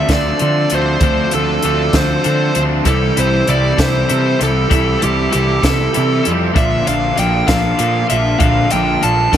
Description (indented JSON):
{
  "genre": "indie rock",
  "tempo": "65 BPM (dotted quarters)",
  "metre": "6/8",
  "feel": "straight",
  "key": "unclear",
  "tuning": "A4 = 440 Hz",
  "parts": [
    { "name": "fuzz lead guitar", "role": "melody", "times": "0.0-9.4 s", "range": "G4 to A5", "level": "-18 LUFS", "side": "right 1 dB", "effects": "distortion" },
    { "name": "overdriven electric guitar", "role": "riff", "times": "0.0-9.4 s", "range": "D3 to F4", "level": "-21 LUFS", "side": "right 7 dB", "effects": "analog chorus" },
    { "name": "twelve-string electric guitar", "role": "riff", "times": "0.0-9.4 s", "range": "Bb2 to A4", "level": "-19 LUFS", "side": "left 8 dB", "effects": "none" },
    { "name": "fuzz picked electric bass", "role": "bass", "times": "0.0-9.4 s", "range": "Bb1 to D3", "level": "-17 LUFS", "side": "right 1 dB", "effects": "overdrive" },
    { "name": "compact cocktail drum kit", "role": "drums", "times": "0.1-9.4 s", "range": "hi-hat, kick drum, snare drum", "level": "-18 LUFS", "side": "equal", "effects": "none" }
  ],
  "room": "light reverb",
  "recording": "none",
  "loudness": "-12 LUFS",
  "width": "side -10 dB against mid",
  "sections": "0.0-9.4 A section",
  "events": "none",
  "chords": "0.0 Dm7; 2.9 C6; 6.6 Bbmaj7"
}